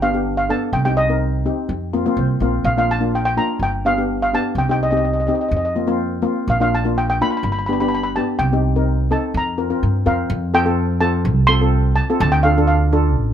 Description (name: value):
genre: calypso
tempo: 126 BPM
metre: 4/4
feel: straight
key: unclear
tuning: A4 = 440 Hz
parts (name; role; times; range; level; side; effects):
- steel pan; melody; 0.0-13.3 s; Eb5 to C6; -20 LUFS; equal; plate reverb
- steel pan; accompaniment; 0.0-13.2 s; Bb3 to F5; -21 LUFS; left 2 dB; none
- upright bass; bass; 0.0-13.3 s; G1 to G2; -20 LUFS; right 1 dB; none
room: light reverb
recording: none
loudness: -16 LUFS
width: side -9 dB against mid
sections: 0.0-10.3 A section; 10.3-13.3 B section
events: steel pan fill 1.9-2.6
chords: 0.0 G; 0.7 Cm7; 1.7 Fsus4; 2.6 Bb; 3.6 G; 4.6 Cm; 5.5 Fsus4; 6.5 Bb; 7.4 G; 8.4 Cm7; 9.3 Fsus4; 10.3 F; 12.2 Dm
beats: 0.25 | 0.73 1.21 1.69 2.17 | 2.65 3.13 3.61 4.08 | 4.56 5.04 5.52 6.00 | 6.48 6.95 7.43 7.91 | 8.39 8.87 9.34 9.82 | 10.30 10.77 11.25 11.73 | 12.20 12.68 13.16